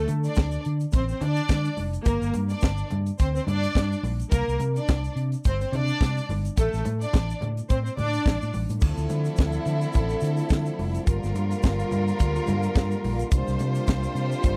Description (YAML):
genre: disco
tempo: 107 BPM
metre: 4/4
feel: swing 56% on 16ths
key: D minor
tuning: A4 = 443 Hz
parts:
  - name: rich symphonic string section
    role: second line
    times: 0.0-14.6 s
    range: F3 to D5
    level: -32 LUFS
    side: equal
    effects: none
  - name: fingered electric bass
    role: bass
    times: 0.0-14.6 s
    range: F1 to D3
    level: -29 LUFS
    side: equal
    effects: none
  - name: tight funk drum kit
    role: drums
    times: 0.1-14.6 s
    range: crash cymbal, hi-hat, kick drum, snare drum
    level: -24 LUFS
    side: equal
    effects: none
  - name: congas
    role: percussion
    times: 0.1-14.6 s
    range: none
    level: -39 LUFS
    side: equal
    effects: none
  - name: tube shaker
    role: percussion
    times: 0.1-14.6 s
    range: none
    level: -51 LUFS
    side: equal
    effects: none
  - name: warm French horn section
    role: sustained chords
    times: 8.8-14.6 s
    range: C3 to F4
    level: -36 LUFS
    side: equal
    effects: none
room: small room reverb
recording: dry, close 1970s-style studio recording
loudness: -25 LUFS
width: mono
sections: 0.0-8.8 A section; 8.8-14.6 B section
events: none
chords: 0.0 D7(no3); 2.1 G5; 6.6 Am; 8.8 Dm9; 11.1 Gm7; 13.3 C9sus4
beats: 0.37 0.94 1.50 | 2.06 2.63 3.19 3.75 | 4.32 4.88 5.45 6.01 | 6.57 7.14 7.70 8.26 | 8.82 9.39 9.95 10.51 | 11.07 11.63 12.19 12.75 | 13.31 13.87 14.43